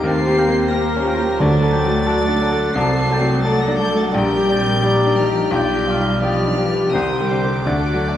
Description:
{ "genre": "classical, romantic movement for piano and orchestra", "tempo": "87 BPM", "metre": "4/4", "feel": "rubato", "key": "G minor", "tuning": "A4 = 440 Hz", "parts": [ { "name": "clear baby grand piano", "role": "melody", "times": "0.0-8.2 s", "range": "Bb1 to A4", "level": "-20 LUFS", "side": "left 2 dB", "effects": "none" }, { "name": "warm chamber violin section", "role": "melody", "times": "0.0-8.2 s", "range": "D6 to C7", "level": "-28 LUFS", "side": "left 2 dB", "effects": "none" }, { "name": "clear clarinet", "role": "second line", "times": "0.0-8.2 s", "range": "Bb4 to D5", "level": "-31 LUFS", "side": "left 2 dB", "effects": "none" }, { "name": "concert flute", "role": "second line", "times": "0.0-8.2 s", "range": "F#5 to A5", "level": "-32 LUFS", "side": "left 1 dB", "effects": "none" }, { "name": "rich studio violin section", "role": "second line", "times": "0.0-8.2 s", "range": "F#4 to A5", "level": "-28 LUFS", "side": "left 1 dB", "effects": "none" }, { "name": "warm oboe", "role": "second line", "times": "0.0-8.2 s", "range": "D5 to Bb5", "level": "-29 LUFS", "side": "equal", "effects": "none" }, { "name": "warm bassoon", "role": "accompaniment", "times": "0.0-8.2 s", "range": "F3 to Bb3", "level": "-31 LUFS", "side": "equal", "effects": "none" }, { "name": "warm chamber viola section", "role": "accompaniment", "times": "0.0-8.2 s", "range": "F#3 to A4", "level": "-27 LUFS", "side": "right 1 dB", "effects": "none" }, { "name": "mellow French horn section", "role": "sustained chords", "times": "0.0-8.2 s", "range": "F#3 to A4", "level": "-25 LUFS", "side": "left 3 dB", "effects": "none" }, { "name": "warm trumpet", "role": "stabs", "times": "0.0-8.2 s", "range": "Bb4 to D5", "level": "-28 LUFS", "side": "right 2 dB", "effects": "none" }, { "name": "dark chamber cello section", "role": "bass", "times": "0.0-8.2 s", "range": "D3 to C4", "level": "-25 LUFS", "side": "right 2 dB", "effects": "none" }, { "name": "warm chamber double bass section", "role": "bass", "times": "0.0-8.2 s", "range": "Bb1 to Eb2", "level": "-25 LUFS", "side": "right 1 dB", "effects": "none" }, { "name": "timpani", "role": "percussion", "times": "1.4-2.4 s", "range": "D3", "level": "-21 LUFS", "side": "right 2 dB", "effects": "none" } ], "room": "wet scoring stage reverb, RT60 2.0 s", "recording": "vinyl crackle", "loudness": "-15 LUFS", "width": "side -11 dB against mid", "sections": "0.0-8.2 A section", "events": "none", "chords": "0.0 Eb7; 1.4 D; 2.8 D7/C; 4.1 Gm/Bb; 5.5 G7/B; 6.9 Cm; 7.7 D" }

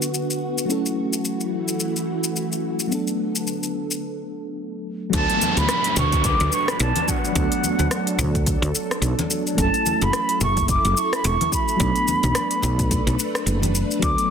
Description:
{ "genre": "sunset chillout", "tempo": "108 BPM", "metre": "4/4", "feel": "swing 58% on 16ths", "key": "D major", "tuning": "A4 = 440 Hz", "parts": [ { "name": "mellow FM electric piano", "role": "accompaniment", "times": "0.0-14.3 s", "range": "F#3 to A4", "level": "-27 LUFS", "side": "moving between left 4 dB and right 4 dB", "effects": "chorus, phaser, auto-pan, digital delay" }, { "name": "soft string machine", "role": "sustained chords", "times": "0.0-14.3 s", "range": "D3 to B4", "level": "-28 LUFS", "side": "equal", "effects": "ensemble chorus" }, { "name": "deep house drum kit", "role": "drums", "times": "0.0-14.3 s", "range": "hi-hat, rim click, shaker", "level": "-26 LUFS", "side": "left 2 dB", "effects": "small room ambience" }, { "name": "mellow concert flute", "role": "melody", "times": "5.1-14.3 s", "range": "F#5 to D6", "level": "-23 LUFS", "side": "right 2 dB", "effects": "ping-pong delay" }, { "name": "woody fretless electric bass", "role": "bass", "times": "5.1-14.1 s", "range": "E1 to D2", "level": "-22 LUFS", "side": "equal", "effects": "none" }, { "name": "electronic kick drum", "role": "drums", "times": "5.1-14.2 s", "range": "none", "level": "-25 LUFS", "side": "equal", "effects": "small room ambience" }, { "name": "downlifter", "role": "sound effects", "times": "5.1-9.6 s", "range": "none", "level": "-29 LUFS", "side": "right 1 dB", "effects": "none" }, { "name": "congas", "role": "percussion", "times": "5.4-13.7 s", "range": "none", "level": "-30 LUFS", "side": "left 3 dB", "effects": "none" } ], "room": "light reverb, digital ambience", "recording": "dense, heavily limited modern master", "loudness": "-19 LUFS", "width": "side -7 dB against mid", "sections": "0.0-5.1 A section; 5.1-14.3 B section", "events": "break 4.0-5.1", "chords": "0.0 D6; 0.7 F#m7; 2.9 Bm7; 5.1 D6; 9.6 F#m7; 11.8 Bm7" }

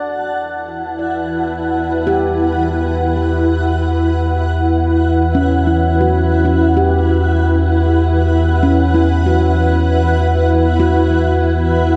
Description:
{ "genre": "ambient", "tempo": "55 BPM", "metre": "4/4", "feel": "straight", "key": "E dorian", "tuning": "A4 = 440 Hz", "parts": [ { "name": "granular cloud pad", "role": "sustained chords", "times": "0.0-12.0 s", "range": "E4 to A5", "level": "-18 LUFS", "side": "equal", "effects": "built-in reverb" }, { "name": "handpan", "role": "arpeggios", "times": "0.0-12.0 s", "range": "C#4 to D5", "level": "-23 LUFS", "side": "equal", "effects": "tape echo" }, { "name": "warm sub bass", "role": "bass", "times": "0.0-12.0 s", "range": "E2", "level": "-18 LUFS", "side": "equal", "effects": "none" } ], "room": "wet huge ambient reverb, RT60 8.1 s", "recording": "dark, warm production", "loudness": "-15 LUFS", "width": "mono", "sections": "0.0-12.0 A section", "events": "none", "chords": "0.0 Em" }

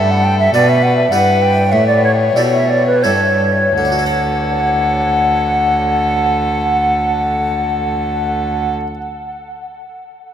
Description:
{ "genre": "classical, baroque-style sonata movement with continuo", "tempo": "79-107 BPM", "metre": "3/4", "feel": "straight", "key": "D major", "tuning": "A4 = 440 Hz", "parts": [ { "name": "dark violin", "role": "melody", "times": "0.0-8.7 s", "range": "A4 to C#5", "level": "-21 LUFS", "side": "left 4 dB", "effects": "none" }, { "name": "bright baroque flute", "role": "second line", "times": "0.0-8.7 s", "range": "B4 to G5", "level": "-15 LUFS", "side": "right 1 dB", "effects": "none" }, { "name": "harpsichord", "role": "accompaniment", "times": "0.0-9.0 s", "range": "G2 to F#5", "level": "-24 LUFS", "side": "left 2 dB", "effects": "none" }, { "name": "rich cello", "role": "bass", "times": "0.0-8.7 s", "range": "D2 to B2", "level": "-19 LUFS", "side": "equal", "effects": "none" } ], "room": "wet huge ambient reverb, RT60 7.5 s", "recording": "in a vast, echoing space", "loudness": "-12 LUFS", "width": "side -9 dB against mid", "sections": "0.0-3.8 A section; 3.8-8.3 B section", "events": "slowing down 0.0-3.8", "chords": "0.0 G; 1.1 Em/G; 1.7 A7; 3.8 D" }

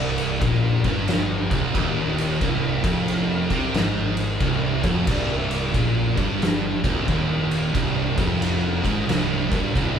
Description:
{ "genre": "stoner and doom metal", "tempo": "90 BPM", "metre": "4/4", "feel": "swing 64% on 8ths", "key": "C minor", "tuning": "A4 = 440 Hz", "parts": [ { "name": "scooped high-gain guitar", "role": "riff", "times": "0.0-10.0 s", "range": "C2 to C3", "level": "-28 LUFS", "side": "left 1 dB", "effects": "distortion" }, { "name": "thick fuzz guitar", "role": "riff", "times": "0.0-10.0 s", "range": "C2 to C3", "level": "-28 LUFS", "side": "left 6 dB", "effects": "distortion" }, { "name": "thick fuzz guitar", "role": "riff", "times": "0.0-10.0 s", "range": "C2 to C3", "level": "-25 LUFS", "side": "right 5 dB", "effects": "distortion" }, { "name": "fuzz fingered electric bass", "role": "bass", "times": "0.0-10.0 s", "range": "C1 to C2", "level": "-31 LUFS", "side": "equal", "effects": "overdrive" }, { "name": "oversized low-tuned drum kit", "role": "drums", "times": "0.2-10.0 s", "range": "crash cymbal, kick drum, ride cymbal, snare drum", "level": "-24 LUFS", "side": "equal", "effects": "none" } ], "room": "light reverb", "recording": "band playing live in one room", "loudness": "-20 LUFS", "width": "side -8 dB against mid", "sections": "0.0-10.0 A section", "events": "none", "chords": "0.0 Cm" }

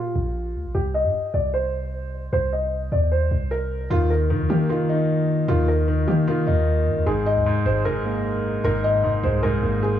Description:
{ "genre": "hip hop, trap", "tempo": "152 BPM", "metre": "4/4", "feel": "half-time", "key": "Eb major", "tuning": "A4 = 440 Hz", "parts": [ { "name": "felt-muted upright piano", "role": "melody", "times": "0.0-10.0 s", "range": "F4 to Eb5", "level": "-25 LUFS", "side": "equal", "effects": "low-pass filter, analog delay" }, { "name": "warm 808-style bass", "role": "bass", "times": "0.0-10.0 s", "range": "Ab1 to Eb3", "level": "-24 LUFS", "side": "equal", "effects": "none" }, { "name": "dark baby grand piano", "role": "accompaniment", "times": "3.9-10.0 s", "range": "Ab2 to Eb4", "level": "-22 LUFS", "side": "left 1 dB", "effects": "low-pass filter" } ], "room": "light reverb, small room ambience", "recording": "dry, gritty hardware recording, cassette tape", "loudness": "-20 LUFS", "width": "side -10 dB against mid", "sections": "0.0-10.0 A section", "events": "filter sweep 0.0-3.9", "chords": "0.0 Bb; 0.7 Cm; 3.9 Ebsus2; 7.1 Abadd9" }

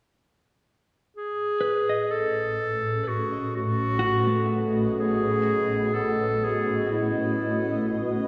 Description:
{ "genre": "ambient", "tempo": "63 BPM", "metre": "4/4", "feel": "straight", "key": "unclear", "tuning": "A4 = 440 Hz", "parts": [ { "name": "granular cloud pad", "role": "sustained chords", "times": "1.9-8.3 s", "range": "A2 to D#5", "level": "-29 LUFS", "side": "equal", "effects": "built-in reverb" }, { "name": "bright clarinet", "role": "melody", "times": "1.2-8.3 s", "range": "E4 to A4", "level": "-28 LUFS", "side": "equal", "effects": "tape echo" }, { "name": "semi-hollow electric guitar", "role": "arpeggios", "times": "1.6-6.3 s", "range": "A3 to D#5", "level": "-33 LUFS", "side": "equal", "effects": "tape echo" } ], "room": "wet plate reverb, RT60 3.3 s", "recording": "echo-heavy mix", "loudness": "-25 LUFS", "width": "mono", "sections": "1.1-8.3 A section", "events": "none", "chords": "1.1 B13" }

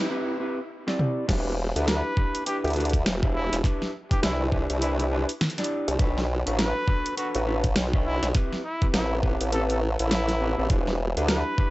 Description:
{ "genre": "glitch hop", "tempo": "102 BPM", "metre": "4/4", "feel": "swing 60% on 16ths", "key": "E minor", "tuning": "A4 = 440 Hz", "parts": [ { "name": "mellow electric guitar", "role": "stabs", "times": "0.0-11.7 s", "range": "C4 to E5", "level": "-31 LUFS", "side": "equal", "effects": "sidechain pumping, tape echo" }, { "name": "dubstep drum kit", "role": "drums", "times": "0.9-11.4 s", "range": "crash cymbal, hi-hat, snare drum, toms", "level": "-28 LUFS", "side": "equal", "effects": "none" }, { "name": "formant-sweep wobble bass", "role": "bass", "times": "1.3-11.4 s", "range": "E1 to D2", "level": "-25 LUFS", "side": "equal", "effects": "chorus, high-pass filter" }, { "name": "electronic kick drum", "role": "drums", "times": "1.3-11.7 s", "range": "none", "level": "-24 LUFS", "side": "equal", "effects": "none" }, { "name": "breathy trumpet", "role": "melody", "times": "1.9-11.7 s", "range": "E4 to B4", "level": "-32 LUFS", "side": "equal", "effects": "tape echo" } ], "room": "light reverb", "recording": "dry, gritty hardware recording, nothing above 7.9 kHz", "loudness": "-23 LUFS", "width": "side -18 dB against mid", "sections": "0.0-1.3 A section; 1.3-11.7 B section", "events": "build-up 0.0-1.3; break 0.1-1.3; drum fill 0.8-1.3; drop 1.3-11.7", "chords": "0.0 Am7 (rootless); 1.3 Em7; 3.6 Cmaj7; 6.0 Bm7; 8.3 Am7; 10.7 Em7" }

